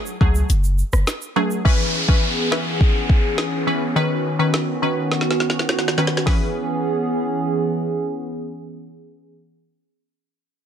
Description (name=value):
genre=dancehall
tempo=104 BPM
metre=4/4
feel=straight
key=C# minor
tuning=A4 = 440 Hz
part: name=wavetable chord stab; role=accompaniment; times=0.0-9.6 s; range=D#3 to B4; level=-22 LUFS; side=left 1 dB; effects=none
part: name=tube shaker and timbales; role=percussion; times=0.1-1.6 s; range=none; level=-29 LUFS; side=right 6 dB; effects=none
part: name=warm 808-style bass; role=bass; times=0.2-1.0 s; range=F#1 to C#2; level=-17 LUFS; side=equal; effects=none
part: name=afro-pop drum kit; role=drums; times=0.2-6.4 s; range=hi-hat, kick drum, rim click, snare drum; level=-19 LUFS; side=equal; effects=vintage 12-bit sampler grit
part: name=hollow soft pad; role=sustained chords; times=1.7-9.3 s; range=D#3 to G#4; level=-23 LUFS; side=right 1 dB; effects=chorus, sidechain pumping
part: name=downlifter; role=sound effects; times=1.7-6.3 s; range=none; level=-26 LUFS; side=equal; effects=none
room=light reverb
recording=dense, heavily limited modern master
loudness=-18 LUFS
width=side -8 dB against mid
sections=0.0-1.7 A section; 1.7-6.3 B section; 6.3-8.6 C section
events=kick muted 0.5-1.7; drum fill 5.1-6.3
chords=0.0 F#madd9; 1.7 C#m7; 4.0 Badd9; 6.3 C#m7